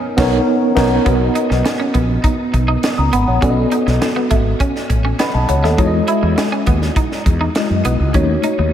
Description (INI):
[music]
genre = polished 1980s jazz-funk pop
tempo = 102 BPM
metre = 4/4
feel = straight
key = B major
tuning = A4 = 441 Hz
[part]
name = tine electric piano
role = accompaniment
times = 0.0-8.7 s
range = G#3 to D#6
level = -17 LUFS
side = left 1 dB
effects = overdrive, fast stereo tremolo, lush chorus, slapback echo
[part]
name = hollow soft pad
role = sustained chords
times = 0.0-1.0 s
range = C#4 to A#4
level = -31 LUFS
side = equal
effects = none
[part]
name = mellow fretless electric bass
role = bass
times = 0.2-8.7 s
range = G#1 to F#2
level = -17 LUFS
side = equal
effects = lush chorus
[part]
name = crisp fusion drum kit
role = drums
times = 0.2-8.6 s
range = crash cymbal, hi-hat, kick drum, snare drum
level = -20 LUFS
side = equal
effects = none
[part]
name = electric guitar at the edge of break-up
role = riff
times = 1.1-8.6 s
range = A3 to E4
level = -22 LUFS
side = right 3 dB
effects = analog chorus, slapback echo
[sound]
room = moderate lush hall reverb, RT60 2.6 s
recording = big arena sound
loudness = -13 LUFS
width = side -10 dB against mid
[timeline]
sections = 0.0-1.1 A section; 1.1-8.7 B section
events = band accent 0.0-1.1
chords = 0.0 Bmaj9; 1.1 Bmaj7; 3.4 B7; 5.8 Emaj9; 8.1 D#m7b5